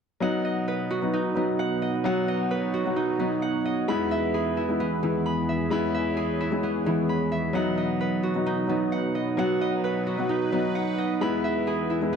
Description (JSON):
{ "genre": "hip hop", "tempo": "131 BPM", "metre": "4/4", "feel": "half-time", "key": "B major", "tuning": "A4 = 440 Hz", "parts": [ { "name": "dark concert grand piano", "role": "accompaniment", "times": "0.2-12.2 s", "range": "F#3 to F#4", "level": "-26 LUFS", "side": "left 2 dB", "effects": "none" }, { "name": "sweeping resonant pad", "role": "sustained chords", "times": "0.2-12.2 s", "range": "E2 to C#5", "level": "-32 LUFS", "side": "right 3 dB", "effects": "chorus" }, { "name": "concert harp", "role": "arpeggios", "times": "0.2-12.2 s", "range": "E3 to B5", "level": "-28 LUFS", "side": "right 3 dB", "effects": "ping-pong delay" } ], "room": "moderate scoring stage reverb, RT60 1.9 s, studio reverb", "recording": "none", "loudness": "-23 LUFS", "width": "side -6 dB against mid", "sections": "0.2-12.2 A section", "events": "none", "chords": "0.2 B; 3.9 E; 7.5 B; 11.2 E", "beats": "| 0.22 0.68 1.14 1.59 | 2.05 2.51 2.97 3.42 | 3.88 4.34 4.80 5.26 | 5.71 6.17 6.63 7.09 | 7.55 8.01 8.46 8.92 | 9.38 9.84 10.29 10.75 | 11.21 11.67 12.13" }